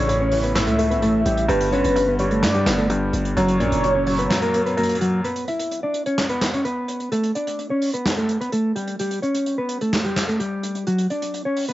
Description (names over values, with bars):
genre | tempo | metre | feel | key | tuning
hip hop, trap | 128 BPM | 4/4 | half-time | B minor | A4 = 441 Hz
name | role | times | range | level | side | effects
mellow electric guitar | melody | 0.0-11.7 s | F#3 to E5 | -22 LUFS | equal | low-pass filter, cassette tape, tape echo
warm velvety synth lead | second line | 0.0-4.7 s | B4 to E5 | -23 LUFS | right 1 dB | chorus, phaser, cassette tape, tape echo
bright baby grand piano | accompaniment | 0.0-5.3 s | F#2 to B3 | -23 LUFS | left 1 dB | low-pass filter, cassette tape
distorted 808-style bass | bass | 0.0-4.3 s | F#1 to G2 | -25 LUFS | equal | distortion
soft brush drum kit | drums | 0.1-11.7 s | handclaps, hi-hat, snare drum | -27 LUFS | right 1 dB | none
room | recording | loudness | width
light reverb | home recording on cassette, nothing above 7.8 kHz | -19 LUFS | side -15 dB against mid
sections
0.0-5.2 A section; 5.2-11.7 B section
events
kick muted 4.3-5.2; break 5.2-11.7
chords
0.0 A; 1.5 G; 3.4 F#; 5.2 Bsus2; 7.1 N.C.; 10.9 F#5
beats
0.09 0.56 1.02 | 1.49 1.96 2.43 2.90 | 3.37 3.84 4.30 4.77 | 5.24 5.71 6.18 6.65 | 7.12 7.59 8.05 8.52 | 8.99 9.46 9.93 10.40 | 10.87 11.34